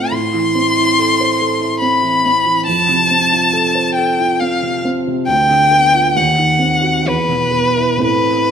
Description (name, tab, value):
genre	classical, romantic duo for violin and grand piano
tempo	60-73 BPM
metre	3/4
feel	rubato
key	A minor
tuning	A4 = 440 Hz
part	rich violin	melody	0.0-8.5 s	B4 to C6	-13 LUFS	left 2 dB	none
part	dark baby grand piano	accompaniment	0.0-8.5 s	D2 to C5	-17 LUFS	right 3 dB	none
room	moderate scoring stage reverb, RT60 1.6 s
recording	none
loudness	-12 LUFS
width	side -8 dB against mid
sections	0.0-8.5 A section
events	none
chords	0.1 Am; 2.7 F; 5.3 Bdim/D; 6.2 D#m6; 7.1 E5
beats	| 0.12 0.97 1.80 | 2.66 3.53 4.40 | 5.27 6.15 7.07 | 8.04